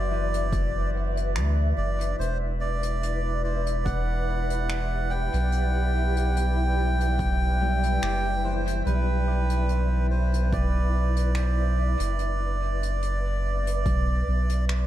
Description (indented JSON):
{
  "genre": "ambient dub",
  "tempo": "72 BPM",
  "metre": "4/4",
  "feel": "swing 54% on 16ths",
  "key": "E minor",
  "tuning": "A4 = 440 Hz",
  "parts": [
    { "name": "melodica", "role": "melody", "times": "0.0-14.7 s", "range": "B4 to G5", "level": "-31 LUFS", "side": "right 2 dB", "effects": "tape echo" },
    { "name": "granular cloud pad", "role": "sustained chords", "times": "0.0-14.9 s", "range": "E4 to E5", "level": "-32 LUFS", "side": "equal", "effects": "built-in reverb" },
    { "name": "Celtic harp", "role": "arpeggios", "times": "0.0-2.2, 7.6-11.0 s", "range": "E3 to D6", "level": "-38 LUFS", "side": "left 8 dB", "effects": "tape echo" },
    { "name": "soft dub sub bass", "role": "bass", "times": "0.0-14.9 s", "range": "E1 to D2", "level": "-24 LUFS", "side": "equal", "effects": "none" },
    { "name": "vintage brush drum kit", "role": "drums", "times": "0.3-14.9 s", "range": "finger snaps, hi-hat", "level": "-38 LUFS", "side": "left 2 dB", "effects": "dub echo" },
    { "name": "electronic kick drum", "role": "drums", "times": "0.5-14.0 s", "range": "none", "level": "-30 LUFS", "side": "equal", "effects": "none" }
  ],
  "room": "light reverb, small room ambience",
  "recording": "none",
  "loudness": "-23 LUFS",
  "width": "side -13 dB against mid",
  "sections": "0.0-14.9 A section",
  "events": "none",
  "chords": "0.0 Bm; 2.2 Em7; 8.9 Bm",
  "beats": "0.53 1.36 | 2.19 3.02 3.86 4.69 | 5.53 6.36 7.19 8.03 | 8.86 9.69 10.53 11.36 | 12.19 13.03 13.86 14.69"
}